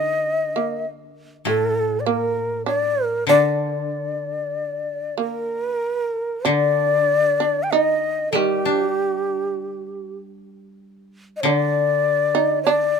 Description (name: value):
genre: japanese traditional, Japanese chamber music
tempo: 48 BPM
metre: 4/4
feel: rubato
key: D miyako bushi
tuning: A4 = 440 Hz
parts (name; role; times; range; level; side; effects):
- mellow shakuhachi; melody; 0.0-13.0 s; G4 to G5; -20 LUFS; left 2 dB; none
- shamisen; second line; 0.0-13.0 s; G3 to Eb4; -24 LUFS; right 6 dB; none
- koto; accompaniment; 0.0-13.0 s; A2 to D4; -26 LUFS; left 2 dB; none
room: light reverb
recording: close, detailed microphones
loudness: -19 LUFS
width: side -6 dB against mid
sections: 0.0-6.5 A section; 6.5-13.0 B section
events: none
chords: none